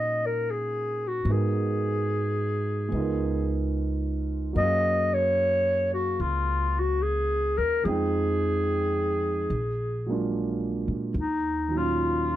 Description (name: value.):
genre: jazz ballad.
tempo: 73 BPM.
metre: 4/4.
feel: swing 69% on 8ths.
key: Eb minor.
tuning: A4 = 440 Hz.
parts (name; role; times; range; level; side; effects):
growling clarinet; melody; 0.0-12.4 s; Eb4 to Eb5; -26 LUFS; left 1 dB; none.
warm concert grand piano; accompaniment; 0.0-12.4 s; Bb2 to G5; -30 LUFS; right 4 dB; none.
upright bass; bass; 0.0-12.4 s; Bb1 to Bb2; -30 LUFS; equal; none.
room: light reverb.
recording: dry, close 1970s-style studio recording.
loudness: -24 LUFS.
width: side -13 dB against mid.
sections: 0.0-12.4 A section.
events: none.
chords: 0.0 Ebm9; 1.3 Abm7; 2.9 Db13; 4.6 Gbmaj7; 7.8 Fm7; 9.5 Bb7b13; 11.1 Ebm9.